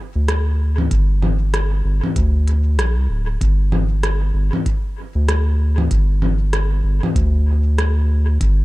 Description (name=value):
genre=ambient dub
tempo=96 BPM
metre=4/4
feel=swing 60% on 16ths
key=G minor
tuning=A4 = 444 Hz
part: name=round analog bass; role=bass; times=0.2-8.6 s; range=D1 to D2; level=-16 LUFS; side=equal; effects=none
part: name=organic electronic drum kit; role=drums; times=0.3-8.6 s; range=congas, hi-hat, rim click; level=-24 LUFS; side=left 1 dB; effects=dub echo
part: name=electronic kick drum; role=drums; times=0.9-8.6 s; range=none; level=-20 LUFS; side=equal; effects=none
room=little or no reverb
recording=dark, warm production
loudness=-16 LUFS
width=side -19 dB against mid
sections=0.0-8.6 A section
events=none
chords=none